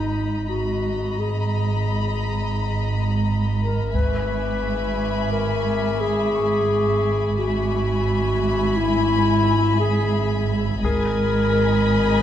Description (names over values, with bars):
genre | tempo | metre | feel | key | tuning
cinematic, suspense film score | 87 BPM | 5/4 | straight | unclear | A4 = 439 Hz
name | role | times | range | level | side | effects
warm studio violin section | melody | 0.0-12.2 s | B5 | -31 LUFS | left 5 dB | none
rich studio violin section | second line | 0.0-12.2 s | D#5 to A#5 | -31 LUFS | left 3 dB | none
warm clarinet | second line | 0.0-12.2 s | D#4 to B4 | -23 LUFS | left 3 dB | none
clear studio double bass section | bass | 0.0-12.2 s | G#1 | -25 LUFS | right 2 dB | none
rich studio cello section | bass | 0.0-12.2 s | G#2 | -25 LUFS | right 2 dB | none
bright grand piano | texture | 0.0-12.2 s | G#4 to C#6 | -33 LUFS | left 1 dB | none
taiko ensemble | drums | 3.9-5.3, 10.8-12.2 s | none | -26 LUFS | left 1 dB | none
warm studio violin section | texture | 3.9-12.2 s | C#6 to B6 | -36 LUFS | left 4 dB | none
room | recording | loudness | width
moderate scoring stage reverb, RT60 1.7 s | dark, warm production | -19 LUFS | side -10 dB against mid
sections
0.0-12.2 A section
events
none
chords
0.0 G#madd9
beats
| 0.48 1.18 1.86 2.55 3.24 | 3.93 4.62 5.31 6.00 6.69 | 7.38 8.07 8.76 9.45 10.14 | 10.83 11.52 12.21